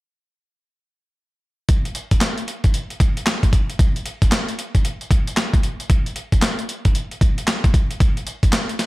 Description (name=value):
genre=R&B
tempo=114 BPM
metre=4/4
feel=swing 62% on 16ths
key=none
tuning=none
part: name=breakbeat sampler-style drum kit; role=drums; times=1.7-8.9 s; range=handclaps, hi-hat, kick drum, snare drum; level=-17 LUFS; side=equal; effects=overdrive, gated reverb
room=little or no reverb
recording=none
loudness=-17 LUFS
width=side -20 dB against mid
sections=1.7-8.9 A section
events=none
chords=none